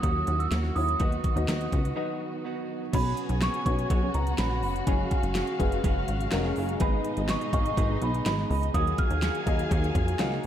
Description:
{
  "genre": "piano-driven pop",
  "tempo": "124 BPM",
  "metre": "4/4",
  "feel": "straight",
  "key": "unclear",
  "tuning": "A4 = 440 Hz",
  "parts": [
    { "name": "celesta", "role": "melody", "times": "0.0-10.4 s", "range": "Ab5 to F6", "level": "-33 LUFS", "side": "right 4 dB", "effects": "lush chorus, diffuse ambient delay" },
    { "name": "dark baby grand piano", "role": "accompaniment", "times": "0.0-10.5 s", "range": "Ab2 to F5", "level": "-34 LUFS", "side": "left 4 dB", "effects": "wide subtle chorus" },
    { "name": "warm studio string section", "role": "sustained chords", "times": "0.0-10.5 s", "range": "Cb3 to F5", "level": "-38 LUFS", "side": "left 1 dB", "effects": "none" },
    { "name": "direct-recorded clean electric guitar", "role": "riff", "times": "0.0-10.5 s", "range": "F#2 to Ab4", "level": "-36 LUFS", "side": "right 8 dB", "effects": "wide subtle chorus" },
    { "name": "plucky analog bass", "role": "bass", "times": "0.0-10.4 s", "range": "F1 to F2", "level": "-29 LUFS", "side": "equal", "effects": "none" },
    { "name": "pop drum kit", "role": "drums", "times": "0.0-10.5 s", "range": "crash cymbal, hi-hat, kick drum, snare drum", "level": "-29 LUFS", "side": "equal", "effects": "none" },
    { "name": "dark studio violin section", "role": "second line", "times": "2.9-10.5 s", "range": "Eb4 to Ab5", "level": "-35 LUFS", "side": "left 3 dB", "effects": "diffuse ambient delay" }
  ],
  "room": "moderate plate reverb, RT60 1.5 s, small room ambience",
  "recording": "dreamy mix soaked in reverb",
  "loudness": "-24 LUFS",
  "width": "side -10 dB against mid",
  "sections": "0.0-2.9 A section; 2.9-10.5 B section",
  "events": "break 2.0-2.9",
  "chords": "0.0 Gb7; 1.0 B; 2.9 Bsus2; 6.8 Abm; 8.7 Ebmadd9",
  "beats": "0.03 0.52 | 1.00 1.48 1.97 2.45 | 2.93 3.42 3.90 4.39 | 4.87 5.35 5.84 6.32 | 6.81 7.29 7.77 8.26 | 8.74 9.23 9.71 10.20"
}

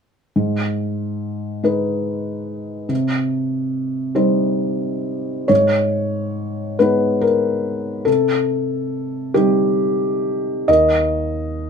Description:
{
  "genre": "neoclassical minimalist piano",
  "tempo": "47 BPM (dotted quarters)",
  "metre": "6/8",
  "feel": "rubato",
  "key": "unclear",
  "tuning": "A4 = 442 Hz",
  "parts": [
    { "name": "felt-muted upright piano", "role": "solo", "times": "0.4-11.7 s", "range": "D#2 to D#5", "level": "-17 LUFS", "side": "left 1 dB", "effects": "none" }
  ],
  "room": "moderate small room reverb, RT60 0.5 s",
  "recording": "minimal, uncompressed stereo recording",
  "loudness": "-17 LUFS",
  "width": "side -6 dB against mid",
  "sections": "0.4-5.5 A section; 5.5-11.7 B section",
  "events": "none",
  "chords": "0.4 G#m; 2.9 Cm; 5.5 G#m; 8.1 Cm; 10.7 N.C.",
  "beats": "| 0.36 1.64 | 2.90 4.16 | 5.50 6.79 | 8.07 9.35 | 10.68"
}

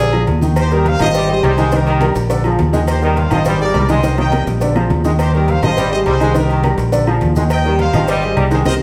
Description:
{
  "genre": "latin, salsa",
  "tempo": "208 BPM",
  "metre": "4/4",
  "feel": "straight",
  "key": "Eb major",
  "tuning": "A4 = 441 Hz",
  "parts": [
    { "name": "clear grand piano", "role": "accompaniment", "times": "0.0-8.7 s", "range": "D3 to Eb5", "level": "-20 LUFS", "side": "equal", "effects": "none" },
    { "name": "fingered electric bass", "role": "bass", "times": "0.0-8.8 s", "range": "Ab1 to Eb2", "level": "-19 LUFS", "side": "equal", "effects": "none" },
    { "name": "agogo bells and timbales", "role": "percussion", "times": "0.1-8.7 s", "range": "none", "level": "-29 LUFS", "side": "equal", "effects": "none" },
    { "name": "claves", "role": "percussion", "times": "0.1-8.7 s", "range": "none", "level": "-38 LUFS", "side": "equal", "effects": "none" },
    { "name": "congas", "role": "percussion", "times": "0.1-8.7 s", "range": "none", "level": "-27 LUFS", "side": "equal", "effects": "none" },
    { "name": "maracas", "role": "percussion", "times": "0.1-8.7 s", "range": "none", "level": "-40 LUFS", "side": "equal", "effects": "none" },
    { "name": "cowbell and bongos", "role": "percussion", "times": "0.3-8.7 s", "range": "none", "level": "-28 LUFS", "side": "equal", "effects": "none" },
    { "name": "bright trumpet section", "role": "melody", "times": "0.6-8.7 s", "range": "G4 to G5", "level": "-23 LUFS", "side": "equal", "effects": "plate reverb" },
    { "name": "brilliant trombone section", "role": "second line", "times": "0.7-8.8 s", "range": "Eb3 to Ab3", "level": "-24 LUFS", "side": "equal", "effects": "none" }
  ],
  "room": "wet large studio reverb, RT60 1.0 s",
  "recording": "heard from further back in the room",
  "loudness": "-15 LUFS",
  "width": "mono",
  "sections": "0.6-8.8 A section",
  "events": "drum fill 4.0-5.2; band accent 8.7",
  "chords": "0.0 Bb7; 0.6 Eb6; 1.1 Abmaj7; 1.7 Cm7; 2.3 Bb7; 2.9 Eb6; 3.5 Abmaj7; 4.0 Cm7; 4.6 Bb7; 5.2 Eb6; 5.8 Abmaj7; 6.3 Cm7; 6.9 Bb7; 7.5 Eb6; 8.1 Abmaj7",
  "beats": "0.28 | 0.56 0.85 1.14 1.43 | 1.72 2.01 2.30 2.59 | 2.88 3.17 3.46 3.75 | 4.03 4.32 4.61 4.90 | 5.19 5.48 5.77 6.06 | 6.35 6.63 6.92 7.21 | 7.50 7.79 8.08 8.37 | 8.65"
}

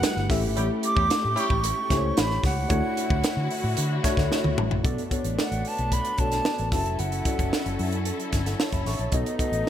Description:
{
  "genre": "polished 1980s jazz-funk pop",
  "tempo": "112 BPM",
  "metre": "4/4",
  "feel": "straight",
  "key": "B minor",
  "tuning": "A4 = 440 Hz",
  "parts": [
    { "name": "breathy mellow silver concert flute", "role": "melody", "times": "0.0-9.7 s", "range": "D#5 to D6", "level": "-29 LUFS", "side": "right 2 dB", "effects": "none" },
    { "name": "tine electric piano", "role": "accompaniment", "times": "0.0-9.7 s", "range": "A3 to C#6", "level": "-30 LUFS", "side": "left 2 dB", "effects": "lush chorus" },
    { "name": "warm symphonic string section", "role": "sustained chords", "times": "0.0-9.7 s", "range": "D3 to F#5", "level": "-34 LUFS", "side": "left 1 dB", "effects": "none" },
    { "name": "crisp fusion drum kit", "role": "drums", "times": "0.0-9.7 s", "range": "hi-hat, kick drum, snare drum, toms", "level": "-27 LUFS", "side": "equal", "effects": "none" },
    { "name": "vintage muted fingered electric bass", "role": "bass", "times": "0.2-9.6 s", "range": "E#1 to D3", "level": "-28 LUFS", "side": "equal", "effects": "none" },
    { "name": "dark horn section", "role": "second line", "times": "0.6-1.5 s", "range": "G3 to G4", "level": "-34 LUFS", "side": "right 2 dB", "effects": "none" }
  ],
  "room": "light reverb, small room ambience",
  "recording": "bright 1980s-style digital production",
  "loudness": "-22 LUFS",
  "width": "side -10 dB against mid",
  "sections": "0.0-4.8 A section; 4.8-9.7 B section",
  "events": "drum fill 4.3-4.8",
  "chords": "0.3 A7; 2.7 Dmaj9; 4.8 Bm7; 6.7 F#m7; 9.1 B7",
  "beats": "0.03 | 0.56 1.10 1.64 2.17 | 2.70 3.24 3.77 4.31 | 4.84 5.38 5.92 6.45 | 6.99 7.52 8.06 8.59 | 9.13 9.66"
}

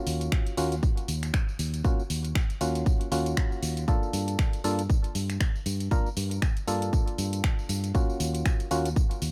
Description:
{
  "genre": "deep house",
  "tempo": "118 BPM",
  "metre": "4/4",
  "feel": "swing 57% on 16ths",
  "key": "unclear",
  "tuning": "A4 = 440 Hz",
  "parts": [
    { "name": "percussive organ stab", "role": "stabs", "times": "0.0-8.9 s", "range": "Bb3 to Bb4", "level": "-34 LUFS", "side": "equal", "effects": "chorus, sidechain pumping, tape echo" },
    { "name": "fingered electric bass", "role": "bass", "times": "0.1-9.3 s", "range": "Eb2 to G2", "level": "-32 LUFS", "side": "equal", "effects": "sidechain pumping" },
    { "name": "house drum kit", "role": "drums", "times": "0.1-9.3 s", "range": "finger snaps, hi-hat, tambourine", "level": "-38 LUFS", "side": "equal", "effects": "none" },
    { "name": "electronic kick drum", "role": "drums", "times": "0.3-9.1 s", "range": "none", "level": "-28 LUFS", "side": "equal", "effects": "none" }
  ],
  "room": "little or no reverb",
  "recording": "none",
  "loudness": "-28 LUFS",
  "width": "mono",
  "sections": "0.0-9.3 A section",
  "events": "none",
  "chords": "0.0 Ebm9; 3.9 Gm9; 7.9 Ebm9",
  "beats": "0.32 0.83 1.34 | 1.84 2.35 2.86 3.37 | 3.88 4.39 4.90 5.41 | 5.91 6.42 6.93 7.44 | 7.95 8.46 8.96"
}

